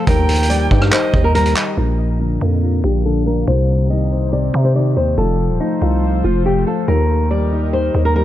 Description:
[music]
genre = hip hop, trap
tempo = 141 BPM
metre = 4/4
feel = half-time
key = Bb major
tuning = A4 = 440 Hz
[part]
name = flamenco guitar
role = melody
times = 0.0-8.2 s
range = Eb4 to Eb5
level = -21 LUFS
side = left 1 dB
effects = low-pass filter, analog delay
[part]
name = dark grand piano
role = accompaniment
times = 0.0-8.2 s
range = Bb2 to F5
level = -21 LUFS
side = left 4 dB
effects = low-pass filter, analog delay
[part]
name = warbly tape-like pad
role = sustained chords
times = 0.0-8.2 s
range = C3 to F5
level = -27 LUFS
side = right 1 dB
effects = chorus, built-in reverb, low-pass filter
[part]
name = breathy bright jazz flute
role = second line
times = 0.1-1.3 s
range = Eb5 to G5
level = -26 LUFS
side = right 4 dB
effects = analog delay
[part]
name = growling 808-style bass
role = bass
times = 0.1-8.2 s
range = Eb1 to C3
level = -16 LUFS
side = right 1 dB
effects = none
[part]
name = vintage drum kit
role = drums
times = 0.1-1.7 s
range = handclaps, hi-hat, kick drum, rim click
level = -17 LUFS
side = right 1 dB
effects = vintage 12-bit sampler grit
[sound]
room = small room ambience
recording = echo-heavy mix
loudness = -14 LUFS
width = side -13 dB against mid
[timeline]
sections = 0.0-1.8 A section; 1.8-8.2 B section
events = filter sweep 1.8-8.2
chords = 0.1 Eb; 1.8 Bb; 3.5 Cm; 5.2 F; 6.9 Eb

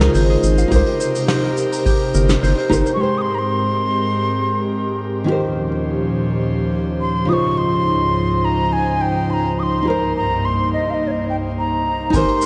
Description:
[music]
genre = sunset chillout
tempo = 105 BPM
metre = 4/4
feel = straight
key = Ab major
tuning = A4 = 440 Hz
[part]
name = nylon-string guitar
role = accompaniment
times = 0.0-12.5 s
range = Db3 to Ab5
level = -24 LUFS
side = equal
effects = none
[part]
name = airy breathy pad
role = sustained chords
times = 0.0-12.5 s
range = C2 to Bb5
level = -23 LUFS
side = equal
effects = chorus
[part]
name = concert harp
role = arpeggios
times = 0.0-4.8, 12.1-12.5 s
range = F4 to Bb5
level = -28 LUFS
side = equal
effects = delay
[part]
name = round analog bass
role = bass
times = 0.0-2.8, 12.1-12.3 s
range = G1 to C2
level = -19 LUFS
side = equal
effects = none
[part]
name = soft brush drum kit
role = drums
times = 0.0-12.5 s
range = hi-hat, shaker, snare drum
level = -27 LUFS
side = equal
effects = low-pass filter on hats, low-pass filter on snare, low-pass filter on perc, low-pass filter on room
[part]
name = electronic kick drum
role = drums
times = 0.7-2.8, 12.1-12.3 s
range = none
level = -22 LUFS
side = equal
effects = none
[part]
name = wooden flute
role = melody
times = 2.9-12.5 s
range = Db5 to Eb6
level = -23 LUFS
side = equal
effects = delay
[sound]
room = moderate lush hall reverb, RT60 1.8 s, small room reverb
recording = worn, warbling old tape, cassette tape, warbly pitch drift, nothing above 10.3 kHz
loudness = -18 LUFS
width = mono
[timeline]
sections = 0.0-3.0 A section; 3.0-12.1 B section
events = none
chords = 0.0 Dbmaj9; 0.7 Cm7; 3.0 Abmaj9; 5.3 Eb13; 7.3 Dbmaj9; 9.9 Cm7

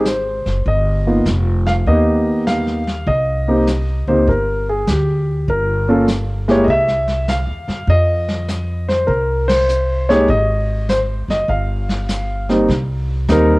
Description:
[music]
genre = jazz piano trio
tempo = 100 BPM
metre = 4/4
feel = swing 67% on 8ths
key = F minor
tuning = A4 = 440 Hz
[part]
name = warm concert grand piano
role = melody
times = 0.0-13.6 s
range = G3 to F5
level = -16 LUFS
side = equal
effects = cassette tape
[part]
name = upright bass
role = bass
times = 0.0-13.6 s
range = F1 to Gb2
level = -19 LUFS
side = equal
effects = none
[part]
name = vintage brush drum kit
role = drums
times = 0.1-13.6 s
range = brushed snare drum, hi-hat, kick drum, ride cymbal, snare drum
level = -24 LUFS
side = equal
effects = cassette tape
[sound]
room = light reverb, small room ambience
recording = home recording on cassette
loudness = -14 LUFS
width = side -22 dB against mid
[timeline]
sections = 0.0-12.7 A section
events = band accent 9.4-9.7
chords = 0.0 Dbmaj7(no3) (rootless); 0.7 G7alt; 3.1 Cm7; 5.5 Gdim; 6.7 C; 7.9 Fm7; 11.5 G7(no3); 12.7 Cm7

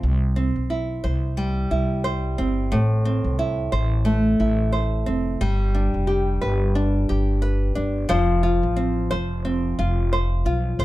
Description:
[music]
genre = acoustic pop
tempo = 89 BPM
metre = 4/4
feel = swing 55% on 16ths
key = unclear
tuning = A4 = 438 Hz
[part]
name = nylon-string guitar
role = accompaniment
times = 0.0-10.8 s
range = A2 to C5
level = -23 LUFS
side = equal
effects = none
[part]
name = upright bass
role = bass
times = 0.0-10.8 s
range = F1 to C2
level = -22 LUFS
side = equal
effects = none
[sound]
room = little or no reverb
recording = dark, warm production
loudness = -20 LUFS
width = side -16 dB against mid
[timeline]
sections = 0.0-8.1 A section; 8.1-10.8 B section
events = none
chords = 0.0 C; 2.7 Am; 5.4 G; 8.1 F

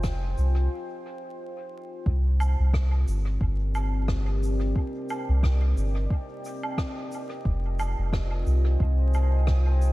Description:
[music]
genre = ambient dub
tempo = 89 BPM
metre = 4/4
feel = swing 57% on 16ths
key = unclear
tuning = A4 = 445 Hz
[part]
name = deep dark ambient pad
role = sustained chords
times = 0.0-9.9 s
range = C4 to Ab5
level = -35 LUFS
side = left 1 dB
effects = chorus, built-in reverb
[part]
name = soft dub sub bass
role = bass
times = 0.0-9.9 s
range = F1 to C2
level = -23 LUFS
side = equal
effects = none
[part]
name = electronic kick drum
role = drums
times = 0.0-9.6 s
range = none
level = -27 LUFS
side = equal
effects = none
[part]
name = shaker, rim click and woodblock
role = drums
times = 0.0-9.9 s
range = none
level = -37 LUFS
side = right 2 dB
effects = dub echo
[sound]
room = little or no reverb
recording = echo-heavy mix, vinyl crackle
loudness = -23 LUFS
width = side -18 dB against mid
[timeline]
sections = 0.0-2.1 A section; 2.1-9.9 B section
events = break 0.7-2.1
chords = 0.0 Fm7; 2.1 Cm7; 7.5 Fm7

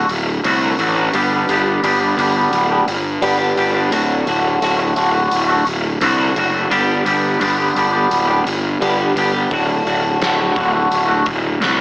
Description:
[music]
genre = quiet-loud alternative rock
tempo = 86 BPM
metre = 4/4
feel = straight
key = D major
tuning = A4 = 440 Hz
[part]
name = twangy electric guitar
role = arpeggios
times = 0.0-11.8 s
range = D2 to G4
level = -16 LUFS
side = equal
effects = phaser
[part]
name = fuzz picked electric bass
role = bass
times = 0.0-11.8 s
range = D1 to C2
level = -19 LUFS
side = equal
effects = overdrive
[part]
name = big rock drum kit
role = drums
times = 0.1-11.8 s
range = hi-hat, kick drum, snare drum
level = -26 LUFS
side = left 1 dB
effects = none
[sound]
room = light reverb, small room ambience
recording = AM radio sound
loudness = -14 LUFS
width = side -21 dB against mid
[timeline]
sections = 0.0-11.8 A section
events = none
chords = 0.0 D; 1.1 G; 3.9 D; 6.7 G; 9.5 D

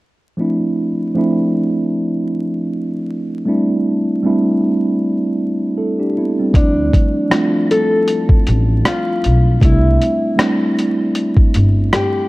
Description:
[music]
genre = lo-fi hip hop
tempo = 78 BPM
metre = 4/4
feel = swing 56% on 16ths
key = D minor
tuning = A4 = 438 Hz
[part]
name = mellow tine electric piano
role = accompaniment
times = 0.4-12.3 s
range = F3 to A4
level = -16 LUFS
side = right 1 dB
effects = slow stereo tremolo, cassette tape, low-pass filter
[part]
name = upright bass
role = bass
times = 6.5-11.9 s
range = G1 to D2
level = -14 LUFS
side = equal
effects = none
[part]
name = lo-fi sampler-style drum kit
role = drums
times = 6.5-12.1 s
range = hi-hat, kick drum, rim click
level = -15 LUFS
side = equal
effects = none
[part]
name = nylon-string guitar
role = melody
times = 6.6-12.3 s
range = D4 to A4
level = -19 LUFS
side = left 1 dB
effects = low-pass filter
[sound]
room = light reverb, studio reverb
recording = dark, warm production, vinyl crackle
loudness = -13 LUFS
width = side -20 dB against mid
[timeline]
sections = 0.4-6.5 A section; 6.5-12.3 B section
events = none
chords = 0.4 Dm9; 3.5 C6; 6.5 Dm9; 9.6 C6

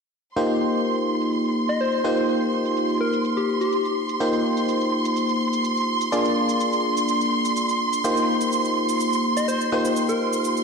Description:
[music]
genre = piano house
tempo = 125 BPM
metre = 4/4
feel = straight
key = Eb major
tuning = A4 = 441 Hz
[part]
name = warm symphonic violin section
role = sustained chords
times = 0.4-10.6 s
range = C6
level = -25 LUFS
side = right 3 dB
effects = none
[part]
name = barking FM electric piano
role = riff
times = 0.4-10.6 s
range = Bb3 to D5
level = -22 LUFS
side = left 1 dB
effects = chorus, ping-pong delay
[part]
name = shaker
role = drums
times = 0.4-10.6 s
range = none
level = -37 LUFS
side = right 5 dB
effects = overdrive, low-pass filter on perc, small room ambience
[part]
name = soft struck synth lead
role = melody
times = 1.7-4.0, 9.4-10.3 s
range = G4 to Eb5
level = -26 LUFS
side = left 2 dB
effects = chorus, cassette tape, ping-pong delay
[sound]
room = wet lush hall reverb, RT60 1.9 s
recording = dreamy mix soaked in reverb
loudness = -20 LUFS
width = side -5 dB against mid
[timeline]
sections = 0.4-10.6 A section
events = none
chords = 0.4 Eb69; 6.1 Bb7; 8.0 Eb69

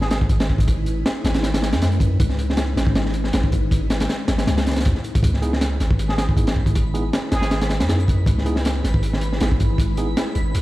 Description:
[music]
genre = drum and bass, jungle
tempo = 158 BPM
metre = 4/4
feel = swing 54% on 16ths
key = C# minor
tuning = A4 = 439 Hz
[part]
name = trumpet with plunger mute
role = melody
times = 0.0-0.2, 6.1-7.6 s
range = G#4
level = -33 LUFS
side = right 1 dB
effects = dub echo
[part]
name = long sustained 808-style bass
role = bass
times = 0.0-10.6 s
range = G#1 to F#2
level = -22 LUFS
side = equal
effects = none
[part]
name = crunchy breakbeat drum kit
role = drums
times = 0.0-10.6 s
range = hi-hat, kick drum, snare drum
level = -20 LUFS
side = equal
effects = none
[part]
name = twinkling granular texture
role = texture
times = 5.7-10.6 s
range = B5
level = -38 LUFS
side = right 2 dB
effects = built-in reverb
[part]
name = mellow tine electric piano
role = stabs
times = 5.4-10.1 s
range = B3 to G#4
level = -30 LUFS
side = right 2 dB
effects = dub echo
[sound]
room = studio ambience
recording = played on a big sound system in a bare room, stone room reverb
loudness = -18 LUFS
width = side -17 dB against mid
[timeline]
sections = 0.0-10.6 A section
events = none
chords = 0.0 C#m9

